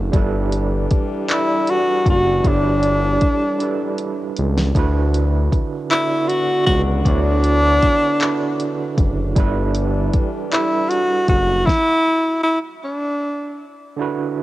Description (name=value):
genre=slow six-eight R&B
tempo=52 BPM (dotted quarters)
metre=6/8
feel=straight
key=unclear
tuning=A4 = 435 Hz
part: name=overdriven tine electric piano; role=accompaniment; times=0.0-14.4 s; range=D3 to D5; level=-24 LUFS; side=right 6 dB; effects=fast tremolo, cassette tape
part: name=smooth gliding synth bass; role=bass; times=0.0-11.6 s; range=F#1 to D2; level=-19 LUFS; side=equal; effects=none
part: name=warm horn section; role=stabs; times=0.1-11.2 s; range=E3 to F#4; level=-29 LUFS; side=left 8 dB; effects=cassette tape
part: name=smooth R&B drum kit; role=drums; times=0.1-11.9 s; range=handclaps, hi-hat, kick drum, snare drum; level=-19 LUFS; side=equal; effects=cassette tape
part: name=breathy tenor saxophone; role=melody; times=1.3-13.7 s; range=D4 to F#4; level=-18 LUFS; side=equal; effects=cassette tape
room=little or no reverb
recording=home recording on cassette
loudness=-16 LUFS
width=side -16 dB against mid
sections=0.0-14.0 A section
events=drum fill 3.6-4.7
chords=0.1 G69; 4.7 D6; 9.4 G69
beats=| 0.13 1.29 | 2.44 3.60 | 4.75 5.90 | 7.06 8.21 | 9.36 10.52 | 11.67 12.82 | 13.98